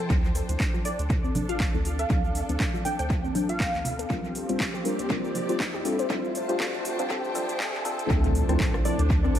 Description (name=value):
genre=deep house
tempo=120 BPM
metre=4/4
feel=swing 56% on 16ths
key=D minor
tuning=A4 = 440 Hz
part: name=warbly tape-like pad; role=sustained chords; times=0.0-9.4 s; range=A3 to E5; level=-38 LUFS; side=equal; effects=chorus, built-in reverb, vintage 12-bit sampler grit, sidechain pumping
part: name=warbly dusty pluck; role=arpeggios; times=0.0-9.4 s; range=C4 to C5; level=-35 LUFS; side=left 4 dB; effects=chorus, phaser, sidechain pumping, tape echo
part: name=deep mellow chord stab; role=stabs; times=0.0-9.0 s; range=E3 to C5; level=-31 LUFS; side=left 2 dB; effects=chorus, sidechain pumping, tape echo
part: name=warm symphonic string section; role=texture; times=0.0-9.4 s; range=F3 to A5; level=-36 LUFS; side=equal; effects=sidechain pumping
part: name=round analog bass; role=bass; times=0.1-9.4 s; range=G1 to F2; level=-30 LUFS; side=equal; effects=tube saturation, sidechain pumping
part: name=electronic kick drum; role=drums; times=0.1-9.2 s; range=none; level=-27 LUFS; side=equal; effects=overdrive
part: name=house drum kit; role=drums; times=0.1-9.4 s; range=handclaps, hi-hat, rim click, shaker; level=-34 LUFS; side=equal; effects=overdrive, high-pass filter on snare, high-pass filter on hats, high-pass filter on perc, high-pass filter on room, tape echo
part: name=congas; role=percussion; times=0.1-8.0 s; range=none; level=-35 LUFS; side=right 2 dB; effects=sidechain pumping on perc
part: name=riser and impact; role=sound effects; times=2.0-9.4 s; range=none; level=-35 LUFS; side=equal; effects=none
part: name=plucky unison lead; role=melody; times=0.9-4.2, 8.9-9.0 s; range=D5 to G5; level=-34 LUFS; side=right 2 dB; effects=wide subtle chorus, tape echo
room=light reverb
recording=echo-heavy mix, high-pass filter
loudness=-24 LUFS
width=side -10 dB against mid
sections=0.1-8.1 A section; 8.1-9.4 B section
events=build-up 0.1-8.1; filter sweep on synth stab 0.1-8.1; filter sweep on ambient pad 0.1-8.1; filter sweep on synth pluck 0.1-8.1; filter sweep 0.1-8.1; riser 2.0-8.1; drop 8.1-9.4; impact 8.1-9.4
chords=0.1 Dm7; 4.1 C7sus4; 5.9 Fmaj7; 8.1 Dm7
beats=| 0.10 0.60 1.10 1.60 | 2.10 2.60 3.10 3.60 | 4.10 4.60 5.10 5.60 | 6.10 6.60 7.10 7.60 | 8.10 8.60 9.10